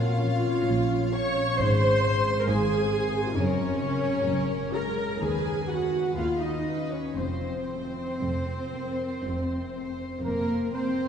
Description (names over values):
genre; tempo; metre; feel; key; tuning
classical; 56-68 BPM; 4/4; rubato; unclear; A4 = 440 Hz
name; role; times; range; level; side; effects
warm symphonic violin section; melody; 0.0-11.1 s; Bb4 to Db5; -40 LUFS; left 2 dB; none
warm symphonic violin section; second line; 0.0-11.1 s; Bb3 to Db6; -34 LUFS; left 2 dB; none
dark symphonic viola section; accompaniment; 0.0-10.8 s; C4 to Db5; -28 LUFS; right 1 dB; none
concert harp; arpeggios; 0.0-11.1 s; Gb2 to F5; -32 LUFS; left 4 dB; none
dark symphonic double bass section; bass; 0.0-11.1 s; F1 to D#2; -33 LUFS; right 2 dB; none
rich chamber cello section; bass; 0.0-11.1 s; D#2 to C4; -32 LUFS; right 1 dB; none
hollow concert flute; second line; 10.2-11.1 s; Bb4 to C5; -36 LUFS; left 4 dB; none
mellow trumpet; stabs; 10.2-11.1 s; Bb4 to C5; -35 LUFS; right 3 dB; none
room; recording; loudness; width
wet church reverb, RT60 3.4 s; recorded in a church or concert hall, nothing above 10.5 kHz; -24 LUFS; side -8 dB against mid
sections
0.0-11.1 A section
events
none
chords
0.0 Bbm; 1.6 Fm/Ab; 3.4 Gb; 5.2 B/D#; 7.2 F